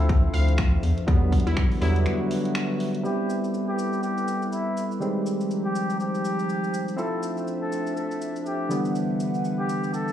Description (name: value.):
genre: deep house.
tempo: 122 BPM.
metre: 4/4.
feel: swing 59% on 16ths.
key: A minor.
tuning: A4 = 440 Hz.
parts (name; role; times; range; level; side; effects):
warbly tape-like pad; sustained chords; 0.0-10.1 s; F3 to F#5; -33 LUFS; left 1 dB; chorus, built-in reverb, vintage 12-bit sampler grit, sidechain pumping.
barky tine electric piano; stabs; 0.0-10.1 s; D3 to A4; -27 LUFS; equal; overdrive, vintage 12-bit sampler grit, sidechain pumping, low-pass filter, tape echo.
round analog bass; bass; 0.0-2.1 s; D2 to E2; -22 LUFS; equal; none.
electronic kick drum; drums; 0.1-1.7 s; none; -22 LUFS; equal; overdrive.
house drum kit; drums; 0.1-10.1 s; finger snaps, hi-hat, shaker; -37 LUFS; equal; overdrive.
glassy wavetable pluck; melody; 0.3-2.3 s; E4 to F5; -35 LUFS; left 3 dB; chorus, tape echo.
trumpet with bucket mute; melody; 3.0-10.1 s; E4 to A4; -31 LUFS; left 1 dB; analog delay.
room: little or no reverb.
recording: cassette tape, studio reverb.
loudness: -23 LUFS.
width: side -10 dB against mid.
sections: 0.0-3.0 A section; 3.0-10.1 B section.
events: break 2.1-3.0; filter sweep on tine electric piano 3.0-10.1.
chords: 0.0 Dm9; 0.8 Em9; 3.0 Am9; 5.0 Fm9; 7.0 Dm9; 8.7 Em9.